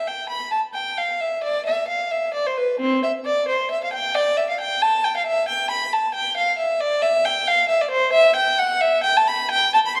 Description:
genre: classical, baroque-style suite movement for unaccompanied violin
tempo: 89 BPM (dotted quarters)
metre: 12/8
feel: rubato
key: unclear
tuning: A4 = 441 Hz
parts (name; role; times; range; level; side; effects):
- rich violin; solo; 0.0-10.0 s; C4 to C6; -21 LUFS; equal; none
room: wet recital hall reverb, RT60 1.4 s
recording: heard from further back in the room, lossy compression artefacts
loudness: -21 LUFS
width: mono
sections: 0.0-10.0 A section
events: none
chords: none

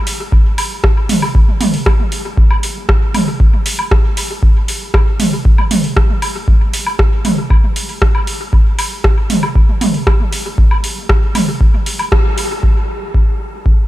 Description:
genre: techno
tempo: 117 BPM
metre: 4/4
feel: straight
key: none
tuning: none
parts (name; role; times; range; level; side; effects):
- deep house drum kit; drums; 0.1-12.5 s; hi-hat, rim click; -20 LUFS; equal; overdrive, dub echo
- electronic kick drum; drums; 0.3-13.8 s; none; -12 LUFS; equal; overdrive
- electronic woodblock and toms; percussion; 0.6-12.1 s; none; -19 LUFS; right 1 dB; sidechain pumping on perc, sidechain pumping on toms, dub echo
room: light reverb, digital ambience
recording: none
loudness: -11 LUFS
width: side -16 dB against mid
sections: 0.0-12.6 A section; 12.6-13.9 B section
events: band accent 12.1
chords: none

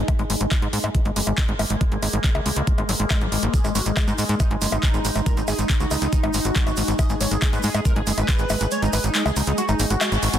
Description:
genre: psychedelic trance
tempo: 139 BPM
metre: 4/4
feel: straight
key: unclear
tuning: A4 = 441 Hz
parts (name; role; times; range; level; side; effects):
- overtone-sweeping drone; sustained chords; 0.0-10.4 s; G#3 to G#4; -30 LUFS; right 1 dB; chorus, built-in reverb, sidechain pumping
- liquid acid bass; riff; 0.0-10.4 s; F#3 to B3; -28 LUFS; moving between left 7 dB and right 7 dB; chorus, auto-pan, sidechain pumping, dub echo
- tight sequencer bass; bass; 0.0-10.4 s; F#1 to G#2; -24 LUFS; equal; none
- warbly tape-like pad; texture; 0.0-10.4 s; G#4 to G#5; -43 LUFS; right 1 dB; none
- drum and bass drum kit; drums; 0.1-10.4 s; bongos, handclaps, hi-hat; -26 LUFS; left 1 dB; overdrive
- electronic kick drum; drums; 0.1-8.4 s; none; -21 LUFS; equal; none
- wide unison lead; melody; 3.5-10.4 s; G#3 to D#5; -29 LUFS; left 1 dB; phaser, sidechain pumping, dub echo
- tube shaker; percussion; 3.5-10.4 s; none; -34 LUFS; right 7 dB; none
room: little or no reverb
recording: dense, heavily limited modern master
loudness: -19 LUFS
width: side -10 dB against mid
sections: 0.0-10.4 A section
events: kick drops out 8.7-10.4; band accent 10.0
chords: 0.0 G#5

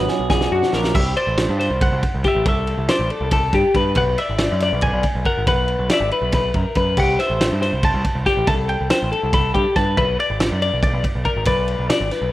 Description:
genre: math rock and midwest emo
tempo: 280 BPM (eighths)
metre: 7/8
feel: straight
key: unclear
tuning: A4 = 441 Hz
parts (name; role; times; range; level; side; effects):
- clean electric guitar; accompaniment; 0.0-1.0 s; B2 to F#4; -24 LUFS; right 10 dB; lush chorus
- twelve-string electric guitar; arpeggios; 0.0-12.3 s; F#4 to D5; -20 LUFS; left 3 dB; none
- growling picked electric bass; bass; 0.0-12.3 s; G#1 to G2; -22 LUFS; right 1 dB; overdrive
- loose indie drum kit; drums; 0.1-12.2 s; crash cymbal, kick drum, ride cymbal, snare drum; -22 LUFS; right 1 dB; none
- semi-hollow electric guitar; melody; 1.0-12.3 s; D5 to B5; -26 LUFS; right 1 dB; none
room: light reverb, small room ambience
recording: rough home demo mix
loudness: -16 LUFS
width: side -15 dB against mid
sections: 1.0-12.3 A section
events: drum fill 0.0-1.0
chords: 0.0 Bm; 1.0 C69; 4.0 Bm; 7.0 C5; 10.0 Bm

